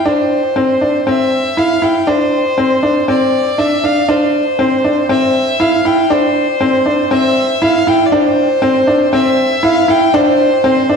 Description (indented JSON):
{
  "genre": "electronica",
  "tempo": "119 BPM",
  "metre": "4/4",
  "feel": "straight",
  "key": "unclear",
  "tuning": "A4 = 442 Hz",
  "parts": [
    { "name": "warm violin", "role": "melody", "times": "0.0-11.0 s", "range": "C5 to G5", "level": "-16 LUFS", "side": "equal", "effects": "none" },
    { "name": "bright upright piano", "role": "riff", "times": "0.1-11.0 s", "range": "C4 to E4", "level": "-12 LUFS", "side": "equal", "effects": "none" }
  ],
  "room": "wet recital hall reverb, RT60 1.7 s",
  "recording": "dark, warm production",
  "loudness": "-10 LUFS",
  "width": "side -6 dB against mid",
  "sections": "0.0-11.0 A section",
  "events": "build-up 0.0-11.0",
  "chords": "0.0 Csus2; 4.1 Cadd9"
}